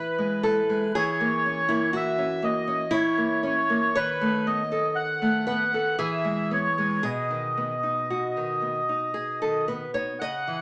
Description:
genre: romantic duo for bandoneon and classical guitar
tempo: 58 BPM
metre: 3/4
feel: uneven beats, rubato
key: unclear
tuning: A4 = 440 Hz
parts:
  - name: bandoneon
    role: melody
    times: 0.0-10.6 s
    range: B4 to F#5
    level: -29 LUFS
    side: equal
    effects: none
  - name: nylon-string guitar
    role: accompaniment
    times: 0.0-10.6 s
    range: B2 to D#5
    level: -29 LUFS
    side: equal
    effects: none
room: moderate studio reverb, RT60 0.8 s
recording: none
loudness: -26 LUFS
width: mono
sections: 0.0-10.6 A section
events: none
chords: 0.0 E; 1.0 F#7/E; 4.0 B7/D#; 6.0 E; 7.0 B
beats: | 0.95 1.95 2.93 | 3.97 4.97 6.00 | 7.05 8.11 9.16 | 10.22

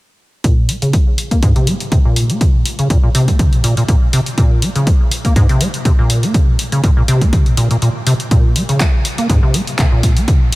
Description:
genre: acid house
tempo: 122 BPM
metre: 4/4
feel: swing 54% on 16ths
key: Bb minor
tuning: A4 = 440 Hz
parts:
  - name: acid bass, square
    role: riff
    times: 0.4-10.5 s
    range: Ab2 to Bb3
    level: -15 LUFS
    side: equal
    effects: tube saturation, analog chorus, analog delay
  - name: electronic kick drum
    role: drums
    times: 0.4-10.4 s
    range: none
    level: -13 LUFS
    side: equal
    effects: none
  - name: punchy analog drum machine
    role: drums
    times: 0.4-10.6 s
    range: handclaps, hi-hat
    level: -22 LUFS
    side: left 1 dB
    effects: none
room: light reverb, digital ambience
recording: none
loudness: -11 LUFS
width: side -20 dB against mid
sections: 0.4-8.3 A section; 8.3-10.6 B section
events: filter sweep on acid bass 0.4-8.3, 8.3-10.6; break 7.8-8.3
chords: none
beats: | 0.44 0.94 1.43 1.92 | 2.41 2.90 3.39 3.89 | 4.38 4.87 5.36 5.85 | 6.34 6.84 7.33 7.82 | 8.31 8.80 9.29 9.79 | 10.28

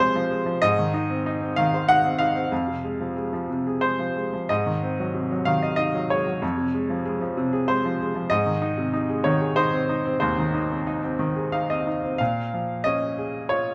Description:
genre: classical, lyrical solo piano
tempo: 93 BPM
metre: 3/4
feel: uneven beats, rubato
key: unclear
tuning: A4 = 439 Hz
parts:
  - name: clear baby grand piano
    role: solo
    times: 0.0-13.7 s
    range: Eb2 to Gb5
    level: -24 LUFS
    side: equal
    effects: none
room: moderate recital hall reverb, RT60 1.6 s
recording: close, detailed microphones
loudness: -24 LUFS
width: mono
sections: 0.0-12.2 A section; 12.2-13.7 B section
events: grand piano fill 11.2-12.2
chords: 0.0 Dbmaj7/F; 0.6 Ab; 2.5 Fm; 4.5 Ab7; 6.4 Dbmaj7/F; 8.3 Ab; 12.2 Bbm7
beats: 0.00 | 0.63 1.27 1.89 | 2.51 3.16 3.82 | 4.49 5.15 5.79 | 6.42 7.06 7.69 | 8.31 8.93 9.56 | 10.21 10.86 11.52 | 12.20 12.86 13.51

